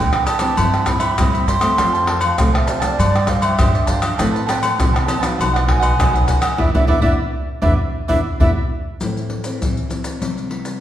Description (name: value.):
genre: samba and choro.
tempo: 100 BPM.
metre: 4/4.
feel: straight.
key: A minor.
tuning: A4 = 440 Hz.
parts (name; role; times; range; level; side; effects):
baroque flute; melody; 0.0-8.5 s; D5 to C6; -22 LUFS; right 2 dB; none.
nylon-string guitar; accompaniment; 0.0-10.8 s; F#2 to C5; -24 LUFS; left 1 dB; none.
upright bass; bass; 0.0-8.5 s; B1 to A2; -21 LUFS; equal; none.
cavaquinho; accompaniment; 0.1-8.5 s; D4 to A5; -26 LUFS; right 5 dB; none.
maracas, pandeiro, tamborim, agogo bells and surdo; percussion; 0.1-10.8 s; none; -19 LUFS; left 1 dB; none.
room: wet recital hall reverb, RT60 1.5 s.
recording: recorded in a church or concert hall.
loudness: -15 LUFS.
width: side -11 dB against mid.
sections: 0.0-9.0 A section; 9.0-10.8 B section.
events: band accent 6.6-9.0; drum fill 7.8-9.0.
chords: 0.0 G; 0.6 C/G; 1.8 Fadd9; 3.0 Gsus4; 4.2 Amadd9; 5.4 B; 6.6 E5; 9.0 Am; 10.2 Cmaj7.